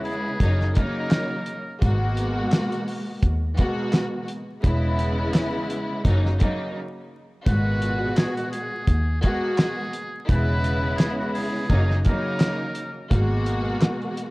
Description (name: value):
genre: hip hop, boom-bap hip-hop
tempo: 85 BPM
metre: 4/4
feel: swing 56% on 16ths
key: G# minor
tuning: A4 = 440 Hz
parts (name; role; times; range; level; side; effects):
- trumpet with metal mute; melody; 0.0-1.8, 7.5-13.1 s; F#4 to B4; -31 LUFS; equal; high-pass filter, low-pass filter, digital delay
- rich studio string section; accompaniment; 0.0-14.3 s; A#2 to F#4; -26 LUFS; equal; high-pass filter, low-pass filter
- cloth-damped thuddy drum kit; drums; 0.1-14.3 s; handclaps, hi-hat, kick drum, snare drum; -22 LUFS; equal; none
- dark double bass; bass; 0.4-13.7 s; E1 to D#2; -23 LUFS; equal; none
room: light reverb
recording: worn, warbling old tape, cassette tape, vinyl crackle, warbly pitch drift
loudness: -21 LUFS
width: side -22 dB against mid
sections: 0.0-14.3 A section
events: break 6.8-7.5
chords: 0.4 D#m7/F#; 1.8 G#m9; 4.6 E6; 6.1 D#m7/F#; 7.5 G#m9; 10.3 E6; 11.7 D#m7/F#; 13.1 G#m9